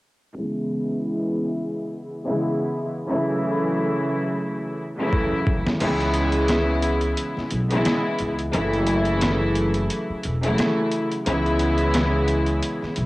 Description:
hip hop, boom-bap hip-hop; 88 BPM; 4/4; swing 56% on 16ths; C# minor; A4 = 440 Hz
warm studio string section; accompaniment; 0.3-13.0 s; C#3 to E4; -22 LUFS; equal; high-pass filter, low-pass filter, cassette tape
trip hop sampler-style drum kit; drums; 5.1-13.1 s; crash cymbal, hi-hat, kick drum, rim click, snare drum; -26 LUFS; equal; overdrive, cassette tape
upright bass; bass; 5.8-13.1 s; E1 to C#2; -25 LUFS; equal
little or no reverb; home recording on cassette; -20 LUFS; side -19 dB against mid
0.4-5.8 A section; 5.8-13.1 B section
filter sweep on string section 0.4-5.8; drum fill 5.1-5.8; kick muted 5.8-13.1
0.4 C#m7; 3.1 F#m7; 5.8 C#m7; 8.5 F#m7; 11.3 C#m7

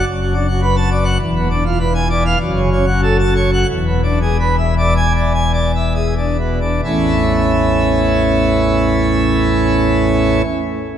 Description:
classical, organ toccata; 64-106 BPM; 4/4; straight; A major; A4 = 440 Hz
pipe organ, plenum; solo; 0.0-10.4 s; E1 to A5; -13 LUFS; equal
wet church reverb, RT60 3.4 s; -13 LUFS; side -9 dB against mid
0.0-6.8 A section; 6.8-10.6 B section
slowing down 0.1-6.8
0.1 Bm7/F#; 1.2 E7b9; 2.4 F#m; 3.7 E7; 6.8 A

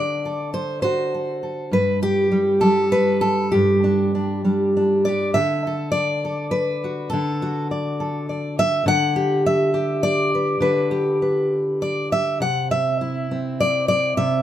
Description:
folk, solo fingerstyle acoustic guitar; 102 BPM; 3/4; rubato; G major; A4 = 440 Hz
fingerpicked steel-string acoustic guitar; solo; 0.0-14.4 s; G2 to F#5; -18 LUFS; equal
little or no reverb; minimal, uncompressed stereo recording; -18 LUFS; side -11 dB against mid
0.0-5.4 A section; 5.4-14.4 B section
0.0 D; 1.7 N.C.; 3.5 G5; 5.4 Dadd9; 8.9 G/D; 12.4 Cadd9

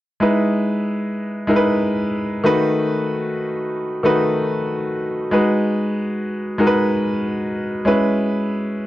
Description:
soul; 94 BPM; 4/4; straight; A4 = 439 Hz
clear baby grand piano; solo; 0.2-8.9 s; D#3 to B4; -17 LUFS; equal
light reverb; -17 LUFS; side -15 dB against mid
0.2-8.9 A section
0.2 Emaj7; 2.4 B7/D#; 5.3 G#m7; 7.9 C#m7

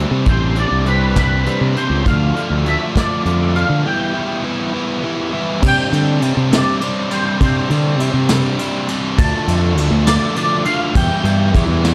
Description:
indie rock; 67 BPM (dotted quarters); 6/8; straight; C major; A4 = 441 Hz
twangy electric guitar; melody; 0.0-11.9 s; B4 to A5; -24 LUFS; equal; ensemble chorus
biting overdriven guitar; riff; 0.0-11.9 s; C3 to E4; -21 LUFS; equal
fuzz fingered electric bass; bass; 0.0-11.9 s; A1 to D3; -19 LUFS; equal; overdrive
soft brush drum kit; drums; 0.3-11.9 s; crash cymbal, hi-hat, kick drum, ride cymbal, snare drum; -22 LUFS; equal
small room ambience; dark, warm production; -16 LUFS; mono
0.0-5.6 A section; 5.6-11.9 B section
break 3.8-5.6
0.0 Csus2; 2.1 Dm; 3.8 Em; 5.6 Csus2; 9.2 Dm; 11.0 Em

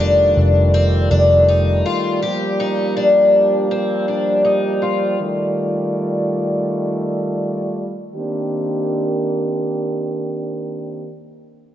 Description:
dream pop; 81 BPM; 4/4; straight; C dorian; A4 = 440 Hz
mellow French horn section; sustained chords; 0.0-11.1 s; Eb3 to D5; -19 LUFS; right 1 dB; low-pass filter
picked twelve-string acoustic guitar; arpeggios; 0.0-5.2 s; C4 to G4; -16 LUFS; left 2 dB; wide subtle chorus, low-pass filter, tape echo
vintage muted picked electric bass; bass; 0.0-1.8 s; F1; -16 LUFS; equal
wet concert hall reverb, RT60 2.2 s; dark, warm production, nothing above 7.8 kHz; -15 LUFS; side -11 dB against mid
0.0-8.1 A section; 8.1-11.1 B section
filter sweep 0.0-8.1
0.0 F13; 2.2 Gm7; 5.2 F13; 8.1 Cm9

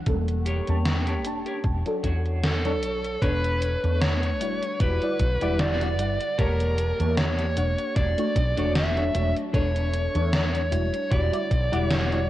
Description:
vaporwave; 76 BPM; 4/4; swing 55% on 16ths; A4 = 440 Hz
mellow FM electric piano; accompaniment; 0.0-12.3 s; F#3 to A5; -30 LUFS; left 1 dB; phaser, ensemble chorus, tape echo
warbly tape-like pad; sustained chords; 0.0-12.3 s; D3 to C#6; -37 LUFS; equal; chorus, built-in reverb
woody fretless electric bass; bass; 0.1-12.3 s; E1 to E2; -26 LUFS; equal
electronic kick drum; drums; 0.1-11.7 s; -24 LUFS; equal
gated 80s digital drum machine; drums; 0.1-12.3 s; hi-hat, snare drum; -28 LUFS; equal; gated reverb, gated reverb snare, overdrive
clean electric guitar; riff; 0.5-12.2 s; D4 to D5; -36 LUFS; left 2 dB; lush chorus, tape echo
dark smooth lead guitar; melody; 2.4-12.3 s; A4 to E5; -28 LUFS; equal; overdrive, vintage 12-bit sampler grit, tape echo
little or no reverb; worn, warbling old tape, cassette tape, warbly pitch drift; -22 LUFS; side -14 dB against mid
0.0-3.2 A section; 3.2-12.3 B section
0.1 A7b9/E; 1.6 Dmaj7/E; 3.2 Bm9/E; 4.8 Em9; 6.4 A7b9/E; 8.0 Dmaj7/E; 9.5 Bm9/E; 11.1 Em9

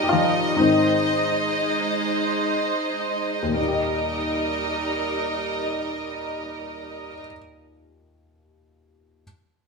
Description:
pop; 38-42 BPM (dotted quarters); 6/8; straight; Eb major; A4 = 441 Hz
warm baby grand piano; accompaniment; 0.0-9.2 s; Eb2 to Eb5; -24 LUFS; left 3 dB
warm studio string section; sustained chords; 0.0-7.2 s; G3 to Eb5; -23 LUFS; right 1 dB
wet stone room reverb, RT60 1.1 s; band playing live in one room; -21 LUFS; side -3 dB against mid
0.0-3.6 A section; 3.6-6.7 B section
slowing down 0.0-3.6; grand piano solo 0.0-3.6
0.0 Eb; 0.6 Ab; 3.6 Eb

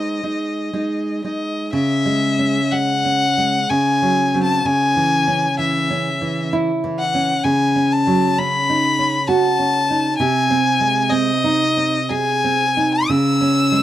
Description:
romantic duo for violin and classical guitar; 59-66 BPM; 3/4; rubato; C# minor; A4 = 440 Hz
rich violin; melody; 0.0-13.8 s; D#5 to E6; -18 LUFS; left 2 dB
nylon-string guitar; accompaniment; 0.0-13.8 s; B#2 to B#4; -18 LUFS; right 2 dB
light reverb, small room ambience; dry, close 1970s-style studio recording; -16 LUFS; side -12 dB against mid
0.0-1.7 A section; 1.7-13.8 B section
0.0 G#; 1.7 C#m; 3.7 G#7/C#; 4.7 C#m; 7.4 D#m7b5/C#; 10.2 G#/B#; 13.1 C#m

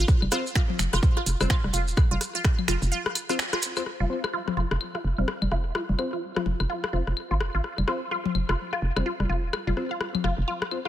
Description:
minimal techno; 127 BPM; 4/4; swing 60% on 16ths; F minor; A4 = 440 Hz
resonant blip pluck; riff; 0.0-10.9 s; F4; -31 LUFS; equal; phaser, sidechain pumping, tape echo
hollow knocking FM bass; bass; 0.0-10.4 s; Eb1 to Ab1; -26 LUFS; right 1 dB; sidechain pumping
electronic kick drum; drums; 0.1-2.6 s; -21 LUFS; right 1 dB
booming analog drum machine; percussion; 0.1-10.9 s; claves, congas, rim click, toms; -30 LUFS; left 4 dB; dub echo
maracas; percussion; 0.1-3.8 s; -34 LUFS; right 2 dB
wavetable chord stab; stabs; 0.3-10.8 s; C4 to C5; -35 LUFS; left 1 dB; dub echo
house drum kit; drums; 0.3-3.7 s; finger snaps, hi-hat; -31 LUFS; right 2 dB
little or no reverb; -24 LUFS; side -12 dB against mid
0.0-3.9 A section; 3.9-10.9 B section
drop 0.0-3.9; break 2.9-3.9; band accent 3.4; filter sweep on synth arpeggio sound 3.9-10.9
0.0 F5

